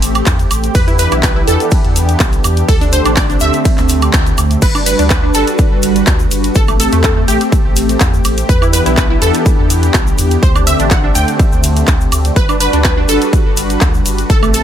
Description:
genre	progressive house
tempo	124 BPM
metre	4/4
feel	straight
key	G major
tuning	A4 = 441 Hz
part	lush unison pad	sustained chords	0.0-14.6 s	D3 to B4	-18 LUFS	equal	chorus, phaser, sidechain pumping
part	wide unison pluck	arpeggios	0.0-14.6 s	A3 to G5	-17 LUFS	right 1 dB	phaser, sidechain pumping, dub echo
part	saturated sub bass	bass	0.0-14.6 s	G1 to E2	-16 LUFS	equal	sidechain pumping
part	pop drum kit	drums	0.0-14.6 s	crash cymbal, handclaps, hi-hat, ride cymbal, woodblock	-19 LUFS	right 1 dB	none
part	tube shaker	percussion	0.0-14.6 s	none	-25 LUFS	left 7 dB	none
part	electronic kick drum	drums	0.3-14.4 s	none	-13 LUFS	equal	overdrive
room	digital ambience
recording	none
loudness	-10 LUFS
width	side -10 dB against mid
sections	0.0-4.6 A section; 4.6-14.6 A section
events	drop 0.0-4.6, 4.6-14.6; band accent 4.1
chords	0.0 Am7; 0.8 Em7; 2.7 D7sus4; 4.6 Gmaj7; 6.6 Am7; 8.5 Em7; 10.4 D7sus4; 12.4 Gmaj7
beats	0.27 | 0.75 1.23 1.72 2.20 | 2.69 3.17 3.65 4.14 | 4.62 5.11 5.59 6.07 | 6.56 7.04 7.52 8.01 | 8.49 8.98 9.46 9.94 | 10.43 10.91 11.39 11.88 | 12.36 12.85 13.33 13.81 | 14.30

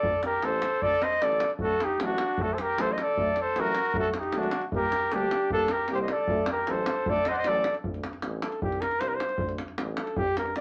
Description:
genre	balkan folk, Balkan brass band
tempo	154 BPM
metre	2/4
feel	straight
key	D phrygian dominant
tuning	A4 = 440 Hz
part	mellow cornet	melody	0.0-10.6 s	F#4 to F#5	-29 LUFS	equal	none
part	clear trumpet	second line	0.0-7.8 s	D4 to D5	-35 LUFS	equal	none
part	clear tuba	bass	0.0-10.6 s	G1 to G2	-40 LUFS	equal	none
part	davul	percussion	0.0-10.6 s	none	-36 LUFS	equal	none
part	dark euphonium	accompaniment	1.6-7.6 s	F#3 to G3	-41 LUFS	equal	none
part	warm euphonium	accompaniment	1.6-7.6 s	A3 to Bb3	-39 LUFS	equal	none
room	moderate club reverb, RT60 0.6 s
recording	none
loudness	-28 LUFS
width	mono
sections	0.0-1.6 A section; 1.6-7.8 A section; 7.8-10.6 B section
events	cornet solo 7.8-10.6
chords	0.0 D5; 1.6 D; 4.7 Gm; 6.3 D; 7.8 D5; 8.6 Gmadd11/C; 9.4 D5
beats	| 0.04 0.43 | 0.82 1.21 | 1.60 1.99 | 2.38 2.77 | 3.17 3.56 | 3.95 4.33 | 4.72 5.12 | 5.50 5.89 | 6.28 6.67 | 7.06 7.45 | 7.84 8.23 | 8.62 9.01 | 9.40 9.78 | 10.17 10.56

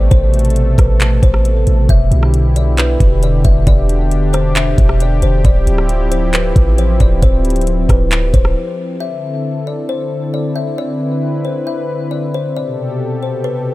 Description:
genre	hip hop, atmospheric cloud-rap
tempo	135 BPM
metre	4/4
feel	half-time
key	unclear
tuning	A4 = 441 Hz
part	kalimba	melody	0.0-13.7 s	B4 to E5	-22 LUFS	left 3 dB	tape echo
part	warm analog pad	sustained chords	0.0-13.7 s	B2 to B4	-19 LUFS	equal	chorus, sidechain pumping
part	warm 808-style bass	bass	0.0-8.6 s	D1 to B1	-14 LUFS	equal	none
part	smooth R&B drum kit	drums	0.1-8.6 s	handclaps, hi-hat, kick drum, rim click	-13 LUFS	equal	none
room	little or no reverb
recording	none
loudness	-12 LUFS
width	side -18 dB against mid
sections	0.0-9.0 A section; 9.0-13.7 B section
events	break 8.6-9.0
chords	0.0 Amadd9; 1.9 Em7; 5.4 Dm11; 9.0 C69; 12.6 Am9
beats	| 0.11 0.56 1.00 1.45 | 1.89 2.34 2.78 3.23 | 3.67 4.11 4.56 5.00 | 5.45 5.89 6.34 6.78 | 7.22 7.67 8.11 8.56 | 9.00 9.45 9.89 10.34 | 10.78 11.22 11.67 12.11 | 12.56 13.00 13.45

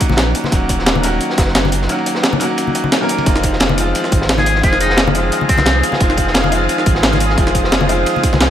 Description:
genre	liquid drum and bass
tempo	175 BPM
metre	4/4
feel	swing 54% on 16ths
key	F phrygian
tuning	A4 = 440 Hz
part	bright concert grand piano	accompaniment	0.0-8.5 s	Eb3 to Bb4	-19 LUFS	equal	digital delay
part	crunchy breakbeat drum kit	drums	0.0-8.5 s	ride cymbal, snare drum	-23 LUFS	equal	high-pass filter on cymbals, high-pass filter on snare, high-pass filter on room
part	electronic kick drum	drums	0.0-8.3 s	none	-16 LUFS	equal	none
part	jungle sampler-style drum kit	drums	0.0-8.5 s	hi-hat, snare drum	-18 LUFS	equal	overdrive
part	warm sub bass	bass	0.1-8.5 s	Eb1 to C2	-19 LUFS	equal	none
part	congas	percussion	0.1-8.4 s	none	-22 LUFS	left 4 dB	none
part	shimmering ambient pad	sustained chords	4.4-8.5 s	Ab4 to Eb6	-22 LUFS	equal	chorus, built-in reverb, sidechain pumping
part	trumpet with metal mute	melody	4.4-5.8 s	C4 to Ab4	-20 LUFS	left 2 dB	dub echo
room	light reverb, small room ambience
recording	none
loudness	-12 LUFS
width	side -10 dB against mid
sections	0.0-8.5 A section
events	kick drops out 1.9-3.3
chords	0.0 Ebm7; 3.3 Fm7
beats	0.18 | 0.52 0.86 1.21 1.55 | 1.89 2.24 2.58 2.92 | 3.27 3.61 3.95 4.29 | 4.64 4.98 5.32 5.67 | 6.01 6.35 6.69 7.04 | 7.38 7.72 8.06 8.41

